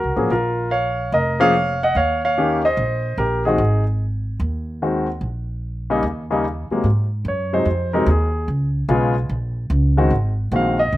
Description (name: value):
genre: jazz piano trio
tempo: 147 BPM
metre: 4/4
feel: swing 65% on 8ths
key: Ab mixolydian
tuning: A4 = 443 Hz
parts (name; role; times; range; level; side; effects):
- warm concert grand piano; melody; 0.0-11.0 s; C3 to Gb5; -18 LUFS; left 1 dB; slapback echo
- upright bass; bass; 0.0-11.0 s; F1 to Ab2; -21 LUFS; right 1 dB; none
room: little or no reverb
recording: recorded outdoors, with no room sound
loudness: -17 LUFS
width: side -16 dB against mid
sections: 0.0-6.9 A section; 6.9-11.0 B section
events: grand piano solo 6.9-11.0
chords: 0.3 Bbm; 1.9 Eb7; 3.6 Ab5; 5.2 N.C.; 6.0 Eb5; 6.9 Ab7; 8.5 Db7(no3); 10.1 Ab7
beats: | 0.31 0.72 1.13 1.54 | 1.95 2.36 2.77 3.18 | 3.59 4.00 4.41 4.81 | 5.22 5.63 6.04 6.45 | 6.86 7.26 7.67 8.08 | 8.49 8.90 9.30 9.71 | 10.12 10.53 10.93